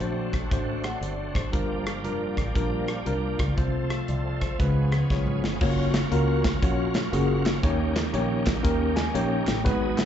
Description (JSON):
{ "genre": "uptempo gospel", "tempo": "118 BPM", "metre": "4/4", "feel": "swing 65% on 8ths", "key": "F# major from 5.6 s", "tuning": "A4 = 441 Hz", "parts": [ { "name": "tine electric piano", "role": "accompaniment", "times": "0.0-10.1 s", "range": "G2 to G#5", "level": "-27 LUFS", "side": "left 1 dB", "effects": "medium stereo tremolo, slapback echo" }, { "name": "bright tonewheel organ", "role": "sustained chords", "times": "0.0-10.1 s", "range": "D3 to A4", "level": "-34 LUFS", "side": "right 3 dB", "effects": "slow rotary speaker, overdrive, chorus vibrato" }, { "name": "warm French horn section", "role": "sustained chords", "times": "0.0-5.6 s", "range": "F3 to F4", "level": "-38 LUFS", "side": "left 1 dB", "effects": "none" }, { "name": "fingered electric bass", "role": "bass", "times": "0.0-10.1 s", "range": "F1 to D#2", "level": "-28 LUFS", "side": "equal", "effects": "none" }, { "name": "modern studio drum kit", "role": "drums", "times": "0.0-10.1 s", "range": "crash cymbal, hi-hat, kick drum, rim click, snare drum, toms", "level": "-27 LUFS", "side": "equal", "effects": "none" }, { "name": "group handclap", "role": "percussion", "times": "5.9-10.1 s", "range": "none", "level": "-40 LUFS", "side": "right 2 dB", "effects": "none" } ], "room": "light reverb, small room reverb", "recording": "live gig heard through the venue's PA, club reverb, nothing above 7.9 kHz", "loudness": "-23 LUFS", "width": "side -9 dB against mid", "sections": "0.0-5.6 A section; 5.6-10.1 B section", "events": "drum fill 5.1-5.6; tine electric piano fill 8.6-9.7", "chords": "0.0 D7; 1.5 Gm7; 3.6 F/C; 4.6 Db7; 5.6 F#maj7; 7.6 D#7", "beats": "0.00 0.51 1.02 | 1.53 2.04 2.56 3.07 | 3.58 4.09 4.59 5.10 | 5.61 6.12 6.62 7.13 | 7.64 8.14 8.64 9.15 | 9.65" }